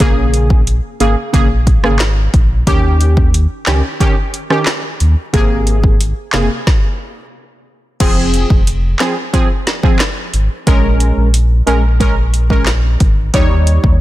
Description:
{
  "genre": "dancehall",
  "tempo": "90 BPM",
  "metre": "4/4",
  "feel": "straight",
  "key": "Bb minor",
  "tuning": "A4 = 440 Hz",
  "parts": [
    { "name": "synth brass stab", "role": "accompaniment", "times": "0.0-14.0 s", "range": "C3 to Db5", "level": "-17 LUFS", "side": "right 1 dB", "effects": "chorus" },
    { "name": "sub bass with octave", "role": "bass", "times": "0.0-14.0 s", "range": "F1 to Eb2", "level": "-13 LUFS", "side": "equal", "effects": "none" },
    { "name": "afro-pop drum kit", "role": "drums", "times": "0.0-14.0 s", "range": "crash cymbal, handclaps, hi-hat, kick drum, rim click, snare drum", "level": "-14 LUFS", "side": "equal", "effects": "none" }
  ],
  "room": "digital ambience",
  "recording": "dense, heavily limited modern master",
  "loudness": "-11 LUFS",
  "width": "side -16 dB against mid",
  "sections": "0.0-8.0 A section; 8.0-14.0 B section",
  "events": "stop 6.7-8.0",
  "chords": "0.0 Bbm7; 2.7 Eb7; 5.3 Abadd9; 8.0 Fm; 10.7 Bbm7; 13.3 Eb7",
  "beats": "| 0.00 0.67 1.34 2.00 | 2.67 3.34 4.00 4.67 | 5.34 6.00 6.67 7.34 | 8.00 8.67 9.34 10.00 | 10.67 11.34 12.00 12.67 | 13.34 14.00"
}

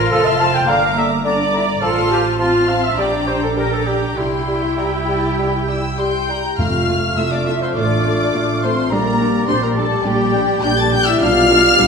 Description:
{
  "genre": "quick classical-period movement for symphony orchestra",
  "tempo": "103 BPM",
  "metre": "4/4",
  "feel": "rubato",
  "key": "F major",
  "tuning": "A4 = 440 Hz",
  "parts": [
    { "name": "dark studio violin section", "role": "melody", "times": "0.0-11.9 s", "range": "G5 to A6", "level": "-21 LUFS", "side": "left 4 dB", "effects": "none" },
    { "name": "mellow clarinet", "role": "second line", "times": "0.0-11.9 s", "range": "E4 to A5", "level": "-23 LUFS", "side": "left 2 dB", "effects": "none" },
    { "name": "warm oboe", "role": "second line", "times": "0.0-11.9 s", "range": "E4 to A5", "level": "-25 LUFS", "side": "right 2 dB", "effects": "none" },
    { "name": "warm studio violin section", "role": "second line", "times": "0.0-11.9 s", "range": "G4 to C6", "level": "-25 LUFS", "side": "left 3 dB", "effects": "none" },
    { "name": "dark studio cello section", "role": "bass", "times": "0.0-11.9 s", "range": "F2 to G4", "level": "-24 LUFS", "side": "right 3 dB", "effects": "none" },
    { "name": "warm studio double bass section", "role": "bass", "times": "0.0-11.9 s", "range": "F1 to C2", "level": "-24 LUFS", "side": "right 4 dB", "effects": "none" },
    { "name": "silver concert flute", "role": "second line", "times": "0.1-11.9 s", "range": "G4 to C6", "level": "-27 LUFS", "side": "left 2 dB", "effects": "none" },
    { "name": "rich studio viola section", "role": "accompaniment", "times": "0.1-11.9 s", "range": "G3 to A5", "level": "-24 LUFS", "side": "right 1 dB", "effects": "none" },
    { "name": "warm bassoon", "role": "accompaniment", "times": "0.1-11.9 s", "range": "D3 to A3", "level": "-25 LUFS", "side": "equal", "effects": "none" },
    { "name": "mellow French horn section", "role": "sustained chords", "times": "6.0-11.9 s", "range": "G3 to A4", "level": "-21 LUFS", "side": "left 2 dB", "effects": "none" },
    { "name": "timpani", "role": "percussion", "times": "6.6-7.4 s", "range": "F2", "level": "-25 LUFS", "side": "left 1 dB", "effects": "none" }
  ],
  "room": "wet recital hall reverb, RT60 1.6 s",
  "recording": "recorded in a church or concert hall",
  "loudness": "-14 LUFS",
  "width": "side -5 dB against mid",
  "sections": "0.0-6.6 A section; 6.6-11.9 B section",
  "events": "none",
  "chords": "0.0 F; 0.7 Gm; 1.8 F/A; 3.0 Gm/Bb; 4.2 C; 6.6 F; 7.8 F/A; 8.9 Gm/Bb; 11.2 G7/B",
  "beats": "0.12 0.68 1.25 | 1.82 2.40 2.98 3.57 | 4.17 4.78 5.38 5.98 | 6.58 7.18 7.76 8.35 | 8.92 9.49 10.06 10.64 | 11.21 11.79"
}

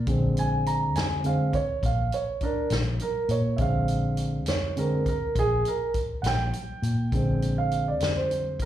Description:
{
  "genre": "slow blues",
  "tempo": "68 BPM (dotted quarters)",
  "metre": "12/8",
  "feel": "straight",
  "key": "Bb mixolydian",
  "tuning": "A4 = 440 Hz",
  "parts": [
    { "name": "dark concert grand piano", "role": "accompaniment", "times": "0.0-8.7 s", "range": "D3 to Bb5", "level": "-26 LUFS", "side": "right 2 dB", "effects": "slapback echo" },
    { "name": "vintage muted fingered electric bass", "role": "bass", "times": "0.0-8.7 s", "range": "Bb1 to Bb2", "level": "-27 LUFS", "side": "left 1 dB", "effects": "none" },
    { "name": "vintage drum kit", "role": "drums", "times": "0.1-8.7 s", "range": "hi-hat, kick drum, snare drum", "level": "-32 LUFS", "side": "left 1 dB", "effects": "none" }
  ],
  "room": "moderate club reverb, RT60 0.6 s",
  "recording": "live gig heard through the venue's PA, club reverb",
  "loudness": "-23 LUFS",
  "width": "side -12 dB against mid",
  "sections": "0.0-8.7 A section",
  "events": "grand piano solo 0.0-8.7",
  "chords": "0.0 Bb9",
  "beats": "| 0.07 0.95 1.83 2.71 | 3.59 4.48 5.36 6.24 | 7.12 8.01"
}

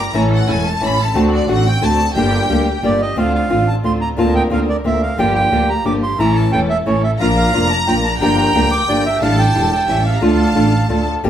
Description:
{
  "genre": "tango",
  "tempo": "179 BPM",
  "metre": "3/4",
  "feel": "rubato",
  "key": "G harmonic minor, D minor from 3.2 s",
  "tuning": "A4 = 440 Hz",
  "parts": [
    { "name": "warm studio violin section", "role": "second line", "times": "0.0-2.8, 7.2-11.1 s", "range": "D5 to B5", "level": "-20 LUFS", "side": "left 2 dB", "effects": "none" },
    { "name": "warm studio string section", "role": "stabs", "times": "0.0-11.2 s", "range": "Bb3 to Bb4", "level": "-25 LUFS", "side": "right 1 dB", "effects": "none" },
    { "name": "clear double bass", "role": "bass", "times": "0.0-11.3 s", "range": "E1 to D2", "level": "-19 LUFS", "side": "right 1 dB", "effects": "none" },
    { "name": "flamenco guitar", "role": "accompaniment", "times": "0.1-11.3 s", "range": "D3 to G4", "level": "-17 LUFS", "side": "left 1 dB", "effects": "none" },
    { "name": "bandoneon", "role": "melody", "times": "2.8-10.9 s", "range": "C#5 to D6", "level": "-19 LUFS", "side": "right 3 dB", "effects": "none" }
  ],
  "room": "moderate large studio reverb, RT60 0.9 s",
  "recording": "band playing live in one room",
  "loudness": "-13 LUFS",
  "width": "side -10 dB against mid",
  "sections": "0.0-3.2 A section; 3.2-11.2 B section",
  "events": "violin section solo 0.0-3.2",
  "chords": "0.1 A; 1.1 D7; 2.2 Gm; 3.2 Dm7; 4.2 Bbadd9/D; 5.2 Gm7; 6.2 A; 7.2 Bb; 8.2 Gm7; 9.2 A7sus4; 9.9 A7; 10.2 Dm",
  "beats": "| 0.14 0.48 0.81 | 1.15 1.48 1.82 | 2.16 2.49 2.83 | 3.17 3.51 3.85 | 4.18 4.52 4.85 | 5.19 5.52 5.86 | 6.19 6.53 6.87 | 7.20 7.54 7.88 | 8.21 8.55 8.88 | 9.22 9.55 9.89 | 10.22 10.56 10.90 | 11.24"
}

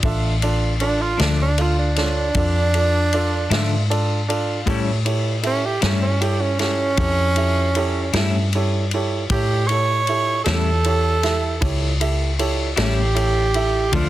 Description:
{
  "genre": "slow blues",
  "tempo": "52 BPM (dotted quarters)",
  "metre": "12/8",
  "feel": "straight",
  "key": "unclear",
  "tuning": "A4 = 440 Hz",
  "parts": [
    { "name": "warm grand piano", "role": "accompaniment", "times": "0.0-14.1 s", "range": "D4 to A5", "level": "-25 LUFS", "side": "right 4 dB", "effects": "none" },
    { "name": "vintage muted fingered electric bass", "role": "bass", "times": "0.0-14.1 s", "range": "A1 to A2", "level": "-21 LUFS", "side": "left 1 dB", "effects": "none" },
    { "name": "vintage drum kit", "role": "drums", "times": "0.0-14.1 s", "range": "kick drum, ride cymbal, snare drum", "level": "-25 LUFS", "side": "left 1 dB", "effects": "none" },
    { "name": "breathy tenor saxophone", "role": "second line", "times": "0.8-14.1 s", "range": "C#4 to C#5", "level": "-22 LUFS", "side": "right 3 dB", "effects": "none" },
    { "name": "clean electric guitar", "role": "accompaniment", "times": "1.2-14.1 s", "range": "A2 to E4", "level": "-25 LUFS", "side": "left 6 dB", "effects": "harmonic tremolo" }
  ],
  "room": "little or no reverb",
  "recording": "dense, heavily limited modern master",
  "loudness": "-17 LUFS",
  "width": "side -14 dB against mid",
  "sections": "0.0-14.1 A section",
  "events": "tenor saxophone solo 0.0-14.1; grand piano fill 3.5-4.7",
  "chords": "0.0 Dm; 4.7 A7",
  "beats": "| 0.03 1.19 2.35 3.51 | 4.67 5.83 6.98 8.14 | 9.30 10.46 11.62 12.78 | 13.94"
}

